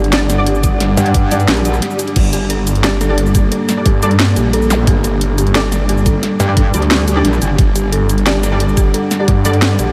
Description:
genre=dark technical drum and bass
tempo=177 BPM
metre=4/4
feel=straight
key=G harmonic minor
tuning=A4 = 440 Hz
part: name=deep dark ambient pad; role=sustained chords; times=0.0-9.9 s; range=G3 to F#5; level=-22 LUFS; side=equal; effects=chorus, built-in reverb, sidechain pumping
part: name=dark detuned synth bell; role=arpeggios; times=0.0-9.9 s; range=G4 to D5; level=-24 LUFS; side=equal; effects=chorus, phaser, sidechain pumping, analog delay
part: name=snarling distorted saw bass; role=bass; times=0.0-9.9 s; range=G1 to G2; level=-18 LUFS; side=equal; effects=distortion, overdrive
part: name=drum and bass drum kit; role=drums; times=0.0-9.9 s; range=cabasa, crash cymbal, hi-hat, snare drum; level=-21 LUFS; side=equal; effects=overdrive
part: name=orchestra-hit-like synth stab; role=stabs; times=0.1-9.5 s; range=G3 to D5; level=-24 LUFS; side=equal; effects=built-in reverb, ensemble chorus, analog delay
part: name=electronic kick drum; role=drums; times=0.6-9.3 s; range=none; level=-15 LUFS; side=equal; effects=overdrive
part: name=metallic wobble bass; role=bass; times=1.0-1.8, 6.4-7.6 s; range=G1 to G2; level=-17 LUFS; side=equal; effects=chorus
part: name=swell and zap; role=sound effects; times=1.6-2.2, 4.7-4.8 s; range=none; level=-32 LUFS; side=equal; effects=none
room=moderate huge ambient reverb, RT60 7.9 s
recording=dreamy mix soaked in reverb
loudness=-14 LUFS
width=mono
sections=0.0-9.9 A section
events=break 1.5-2.2; swell 1.6-2.2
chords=0.0 G5

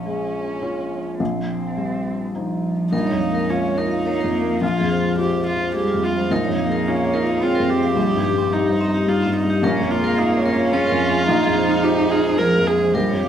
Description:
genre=neoclassical piano and strings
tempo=108 BPM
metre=3/4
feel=rubato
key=Bb dorian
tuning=A4 = 440 Hz
part: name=dark cello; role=second line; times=0.0-13.3 s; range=F3 to Eb4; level=-23 LUFS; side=right 2 dB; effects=none
part: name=felt-muted upright piano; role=accompaniment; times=0.0-13.3 s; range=Bb1 to Db5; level=-22 LUFS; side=left 1 dB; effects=none
part: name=warm viola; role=accompaniment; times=2.9-13.3 s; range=Db4 to Bb4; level=-22 LUFS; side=right 1 dB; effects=none
part: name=vibraphone with medium hard mallets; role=arpeggios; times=2.9-13.3 s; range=C4 to F5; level=-26 LUFS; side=left 1 dB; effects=none
room=moderate large studio reverb, RT60 1.3 s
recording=band playing live in one room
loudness=-17 LUFS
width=side -9 dB against mid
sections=0.0-2.9 A section; 2.9-13.3 B section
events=none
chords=0.0 Bbm7; 1.2 Cm/Bb; 2.9 Bbm7; 4.6 Fm/Bb; 6.3 Bbm7; 8.0 Cm/Bb; 9.6 Bbm7; 11.3 Fm/Bb

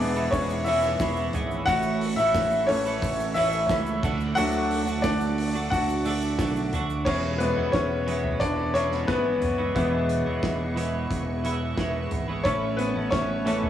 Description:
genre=piano-driven pop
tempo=89 BPM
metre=4/4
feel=straight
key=E mixolydian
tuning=A4 = 441 Hz
part: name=bright upright piano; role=accompaniment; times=0.0-13.7 s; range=E3 to G#5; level=-25 LUFS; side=left 2 dB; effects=cassette tape, plate reverb
part: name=rich studio string section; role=sustained chords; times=0.0-13.7 s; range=G#4 to D6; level=-40 LUFS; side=equal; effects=cassette tape, plate reverb
part: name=twelve-string electric guitar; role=riff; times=0.0-13.7 s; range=E2 to F#4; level=-29 LUFS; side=right 5 dB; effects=lush chorus, cassette tape
part: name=fingered electric bass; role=bass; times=0.0-13.7 s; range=E1 to D2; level=-32 LUFS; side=equal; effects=none
part: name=tube shaker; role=percussion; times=0.2-7.1 s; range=none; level=-50 LUFS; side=right 8 dB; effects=none
part: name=loose indie drum kit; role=drums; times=0.3-13.7 s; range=crash cymbal, hi-hat, kick drum, snare drum, toms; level=-32 LUFS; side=equal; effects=cassette tape
room=moderate small room reverb, RT60 0.6 s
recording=home recording on cassette, small room ambience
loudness=-23 LUFS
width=side -10 dB against mid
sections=0.0-7.1 A section; 7.1-13.7 B section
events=upright piano solo 0.0-7.1, 7.1-13.7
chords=0.0 E; 1.7 A; 4.0 D; 7.1 E; 12.5 A

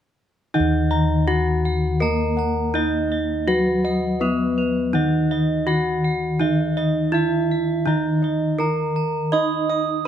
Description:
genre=gamelan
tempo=82 BPM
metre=4/4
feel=straight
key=Eb pelog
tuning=A4 = 440 Hz
part: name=gamelan-type bronze metallophone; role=melody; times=0.5-10.1 s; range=Cb4 to Eb5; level=-22 LUFS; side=right 1 dB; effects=none
part: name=gamelan-type bossed gongs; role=arpeggios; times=0.5-10.1 s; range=Cb5 to Cb6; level=-31 LUFS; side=left 4 dB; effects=none
part: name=gamelan-type bronze metallophone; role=arpeggios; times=0.5-10.0 s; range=Cb5 to Eb6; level=-28 LUFS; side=right 4 dB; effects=none
part: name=gamelan-type bossed gongs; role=bass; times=0.5-10.1 s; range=Eb2 to Eb5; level=-25 LUFS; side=left 1 dB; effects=none
part: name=gamelan-type bronze metallophone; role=accompaniment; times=0.6-10.1 s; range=Eb3 to Eb4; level=-24 LUFS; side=left 1 dB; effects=none
room=light reverb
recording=close, detailed microphones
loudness=-18 LUFS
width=side -9 dB against mid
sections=0.5-10.1 A section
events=none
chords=none

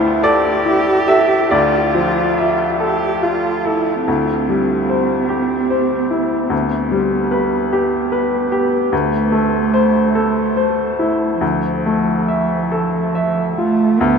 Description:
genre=neoclassical piano and strings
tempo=46-50 BPM (dotted quarters)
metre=6/8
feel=rubato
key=D dorian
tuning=A4 = 438 Hz
part: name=muted cello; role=second line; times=0.0-14.2 s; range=F3 to G4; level=-18 LUFS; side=right 4 dB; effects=none
part: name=bright upright piano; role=accompaniment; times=0.0-14.2 s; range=D2 to E5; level=-16 LUFS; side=left 2 dB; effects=none
room=wet huge ambient reverb, RT60 7.0 s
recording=in a vast, echoing space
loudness=-14 LUFS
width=side -6 dB against mid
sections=0.0-4.1 A section; 4.1-14.0 B section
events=none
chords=0.0 Am/D; 1.5 Dmadd9; 4.1 Cadd9/D; 6.5 G/D; 8.9 Am/D; 11.4 Dmadd9

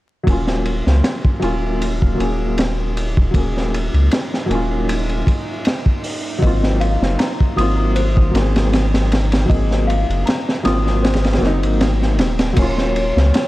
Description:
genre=trip hop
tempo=78 BPM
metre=4/4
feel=swing 54% on 16ths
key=Eb dorian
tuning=A4 = 439 Hz
part: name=felt-muted upright piano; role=accompaniment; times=0.2-13.5 s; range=Gb3 to Ab4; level=-22 LUFS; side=left 1 dB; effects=tremolo, vintage 12-bit sampler grit, low-pass filter, tape echo
part: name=soft dub sub bass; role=bass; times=0.3-13.3 s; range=Eb1 to Db2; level=-18 LUFS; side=equal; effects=none
part: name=crunchy breakbeat drum kit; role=drums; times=0.3-13.5 s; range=crash cymbal, hi-hat, kick drum, ride cymbal, snare drum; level=-19 LUFS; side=equal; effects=vintage 12-bit sampler grit
part: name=bowed-like drone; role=texture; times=2.4-13.5 s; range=Gb3 to Gb4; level=-32 LUFS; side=right 3 dB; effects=none
part: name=small celesta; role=arpeggios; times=6.4-12.6 s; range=C5 to Eb6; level=-26 LUFS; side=left 3 dB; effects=tape echo
part: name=pure breathy sine lead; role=melody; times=12.6-13.5 s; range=Db5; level=-22 LUFS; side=left 1 dB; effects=chorus
room=light reverb, small room ambience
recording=dark, warm production, vinyl crackle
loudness=-15 LUFS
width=side -17 dB against mid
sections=0.3-12.6 A section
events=none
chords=0.3 Ebm9; 6.4 Ab13; 12.6 Ebm9

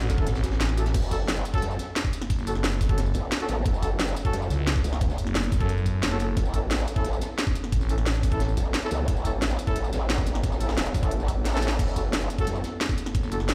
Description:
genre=dark technical drum and bass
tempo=177 BPM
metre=4/4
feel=straight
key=F# minor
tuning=A4 = 439 Hz
part: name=dark chamber string section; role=sustained chords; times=0.0-0.9 s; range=A3 to B4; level=-46 LUFS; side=equal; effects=none
part: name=growling FM bass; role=bass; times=0.0-8.6, 13.1-13.5 s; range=F#1 to F#2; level=-28 LUFS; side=equal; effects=tube saturation
part: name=drum and bass drum kit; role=drums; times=0.0-13.5 s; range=crash cymbal, hi-hat, snare drum, tambourine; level=-32 LUFS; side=equal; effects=none
part: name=dark detuned synth bell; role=arpeggios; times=0.1-0.8 s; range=F#4 to A4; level=-41 LUFS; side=equal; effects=chorus, sidechain pumping, delay
part: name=crunchy breakbeat drum kit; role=drums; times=0.1-13.5 s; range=hi-hat, snare drum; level=-41 LUFS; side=equal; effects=none
part: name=electronic kick drum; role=drums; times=0.1-13.2 s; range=none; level=-29 LUFS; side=equal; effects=none
part: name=dark brass ensemble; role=stabs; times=0.2-13.4 s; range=C#4 to A4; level=-37 LUFS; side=equal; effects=delay
part: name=growl bass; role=bass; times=0.9-12.6 s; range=E1 to F#2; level=-30 LUFS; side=equal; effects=chorus, overdrive, sidechain pumping
part: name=deep dark ambient pad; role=texture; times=1.5-13.5 s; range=B3 to C#5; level=-40 LUFS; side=equal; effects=chorus, built-in reverb, sidechain pumping
room=studio reverb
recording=played on a big sound system in a bare room, stone room reverb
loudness=-26 LUFS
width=mono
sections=0.9-13.5 A section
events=kick drops out 0.6-0.9; drop 0.9-13.5; drum fill 11.5-11.8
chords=0.0 A; 0.9 F#m; 6.4 A; 11.8 F#m

